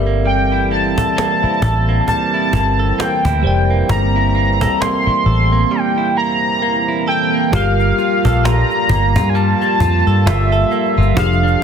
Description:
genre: contemporary R&B.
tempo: 66 BPM.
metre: 4/4.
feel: swing 58% on 16ths.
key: G dorian.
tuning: A4 = 441 Hz.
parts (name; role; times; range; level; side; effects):
bell-like tine electric piano; accompaniment; 0.0-11.6 s; F3 to G5; -23 LUFS; left 1 dB; slow stereo tremolo.
chorused pulse-width pad; sustained chords; 0.0-11.6 s; E3 to A4; -22 LUFS; right 2 dB; none.
direct-recorded clean electric guitar; arpeggios; 0.0-11.6 s; F3 to A4; -23 LUFS; right 8 dB; none.
vintage muted fingered electric bass; bass; 0.0-11.5 s; F1 to G2; -16 LUFS; left 1 dB; none.
warm velvety synth lead; melody; 0.3-11.6 s; E5 to C6; -18 LUFS; equal; chorus.
cajon; drums; 1.0-11.5 s; none; -22 LUFS; equal; none.
room: light reverb, digital ambience.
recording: dense, heavily limited modern master.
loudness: -13 LUFS.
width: side -7 dB against mid.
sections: 0.0-7.5 A section; 7.5-11.6 B section.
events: none.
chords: 0.0 C13; 7.5 Gm9.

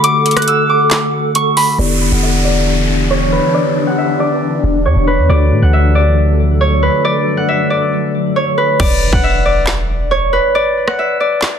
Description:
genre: hip hop, trap.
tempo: 137 BPM.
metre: 4/4.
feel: half-time.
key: unclear.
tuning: A4 = 440 Hz.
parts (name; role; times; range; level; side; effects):
Celtic harp; melody; 0.0-11.6 s; B4 to F#6; -15 LUFS; equal; low-pass filter, ping-pong delay.
mellow tine electric piano; accompaniment; 0.0-8.8 s; D3 to A4; -19 LUFS; left 3 dB; medium stereo tremolo, low-pass filter.
granular cloud pad; sustained chords; 0.0-8.8 s; E3 to D6; -20 LUFS; left 1 dB; built-in reverb, low-pass filter.
trap drum kit; drums; 0.0-1.7, 8.8-11.5 s; crash cymbal, handclaps, hi-hat, kick drum, rim click, snare drum; -16 LUFS; equal; none.
clean 808-style bass; bass; 1.8-10.4 s; E1 to A2; -14 LUFS; equal; none.
downlifter and impact; sound effects; 1.8-5.3, 8.9-10.5 s; none; -22 LUFS; equal; none.
room: light reverb.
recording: dense, heavily limited modern master.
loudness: -11 LUFS.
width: side -8 dB against mid.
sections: 0.0-1.8 A section; 1.8-8.8 B section; 8.8-11.6 C section.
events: break 0.0-1.8; filter sweep 1.8-8.8; hi-hats muted 8.8-11.6; impact 8.8-10.5.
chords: 0.0 D; 1.8 Em7; 5.3 D; 8.8 D69/E.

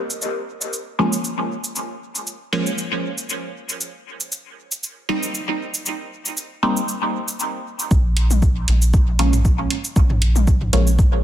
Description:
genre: dub techno.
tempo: 117 BPM.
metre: 4/4.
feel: swing 55% on 16ths.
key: unclear.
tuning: A4 = 440 Hz.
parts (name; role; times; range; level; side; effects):
electronic shaker and hi-hat; drums; 0.1-11.1 s; none; -26 LUFS; right 2 dB; overdrive.
filtered dub chord stab; stabs; 1.0-10.9 s; F3 to Eb4; -23 LUFS; right 1 dB; phaser, sidechain pumping, dub echo.
soft dub sub bass; bass; 7.9-11.2 s; Bb1; -18 LUFS; equal; sidechain pumping.
electronic kick drum; drums; 7.9-11.1 s; none; -17 LUFS; equal; none.
electronic toms; percussion; 8.3-11.1 s; none; -28 LUFS; left 4 dB; sidechain pumping on toms, dub echo.
room: light reverb, digital ambience.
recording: dense, heavily limited modern master.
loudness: -18 LUFS.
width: side -12 dB against mid.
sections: 0.0-7.9 A section; 7.9-11.2 B section.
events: none.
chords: 0.0 Bbm7; 3.8 Cm7; 7.9 N.C..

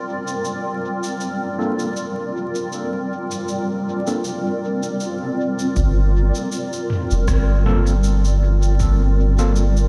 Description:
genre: ambient dub.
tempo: 79 BPM.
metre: 4/4.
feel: swing 55% on 16ths.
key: G minor.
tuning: A4 = 440 Hz.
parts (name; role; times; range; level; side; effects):
granular cloud pad; sustained chords; 0.0-9.9 s; G3 to D5; -26 LUFS; equal; built-in reverb, analog chorus.
organic electronic drum kit; drums; 0.3-9.9 s; rim click, shaker, toms; -33 LUFS; equal; dub echo.
overdriven tine electric piano; stabs; 1.6-9.6 s; Bb3 to A4; -30 LUFS; equal; medium tremolo, low-pass filter, dub echo.
soft dub sub bass; bass; 5.8-9.9 s; F1 to G1; -18 LUFS; equal; none.
electronic kick drum; drums; 5.8-9.0 s; none; -26 LUFS; equal; none.
room: moderate lush hall reverb, RT60 3.0 s.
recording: dreamy mix soaked in reverb, vinyl crackle.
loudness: -20 LUFS.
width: mono.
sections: 0.0-5.8 A section; 5.8-9.9 B section.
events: none.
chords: 0.0 Gm11.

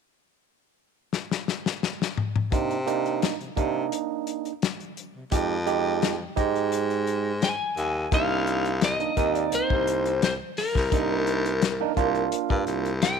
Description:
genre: straight-eighth soul blues.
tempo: 86 BPM.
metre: 4/4.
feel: straight.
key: C minor.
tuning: A4 = 440 Hz.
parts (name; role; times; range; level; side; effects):
warm soul drum kit; drums; 1.1-13.2 s; hi-hat, kick drum, snare drum, toms; -27 LUFS; left 5 dB; none.
overdriven tine electric piano; accompaniment; 2.5-12.9 s; Ab3 to G4; -27 LUFS; right 14 dB; none.
clear baritone saxophone; bass; 2.5-13.2 s; C2 to C3; -28 LUFS; left 1 dB; none.
lightly driven lead guitar; melody; 7.4-13.2 s; Bb4 to Ab5; -27 LUFS; left 3 dB; none.
room: light reverb, studio ambience.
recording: 1960s-style stereo.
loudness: -23 LUFS.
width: side -6 dB against mid.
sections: 0.0-2.5 A section; 2.5-8.1 B section; 8.1-13.2 C section.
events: drum fill 1.1-2.5.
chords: 0.0 N.C.; 2.5 Cm7; 5.3 Fm7; 8.1 Cm7.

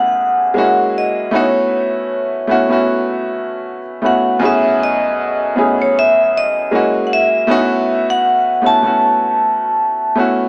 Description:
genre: soul.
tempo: 78 BPM.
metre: 4/4.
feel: swing 54% on 16ths.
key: unclear.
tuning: A4 = 438 Hz.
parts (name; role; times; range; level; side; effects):
vibraphone with hard mallets; melody; 0.0-10.2 s; C#5 to A5; -17 LUFS; equal; none.
bright grand piano; accompaniment; 0.0-10.5 s; F#2 to G#4; -18 LUFS; equal; none.
room: light reverb.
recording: small speaker sound.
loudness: -15 LUFS.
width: mono.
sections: 0.0-10.5 A section.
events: none.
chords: 0.0 F#m11; 0.6 F#7; 1.3 B9sus4; 4.4 F#m11; 6.7 F#7; 7.5 B9sus4.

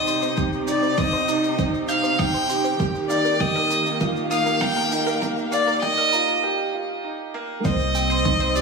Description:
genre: piano and strings electronica.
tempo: 99 BPM.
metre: 4/4.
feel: straight.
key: C minor.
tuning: A4 = 440 Hz.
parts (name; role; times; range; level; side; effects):
clear violin; melody; 0.0-8.6 s; D5 to G5; -22 LUFS; left 1 dB; tape echo.
muted string quartet; sustained chords; 0.0-8.6 s; C3 to F5; -28 LUFS; right 2 dB; sidechain pumping, low-pass filter.
warm concert grand piano; riff; 0.0-8.6 s; Bb3 to C5; -26 LUFS; right 2 dB; tape echo.
wide unison pluck; arpeggios; 0.1-8.6 s; Bb4 to G6; -31 LUFS; equal; sidechain pumping, tape echo.
shaker; drums; 0.1-8.6 s; none; -37 LUFS; right 6 dB; high-pass filter on perc, high-pass filter on room.
electronic kick drum; drums; 0.4-8.4 s; none; -26 LUFS; equal; none.
warm sub bass; bass; 7.6-8.6 s; C2; -25 LUFS; equal; tube saturation, sidechain pumping.
room: wet echo chamber reverb, RT60 1.7 s, small room ambience.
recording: high-pass filter, studio reverb.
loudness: -19 LUFS.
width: side -4 dB against mid.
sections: 0.0-7.6 A section.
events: build-up 0.0-7.6; filter sweep on string quartet 0.0-7.6; filter sweep on synth arpeggio sound 0.0-7.6; filter sweep 0.0-7.6; break 6.4-7.6.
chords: 0.0 Cm; 2.8 Ebadd9; 7.6 Cm.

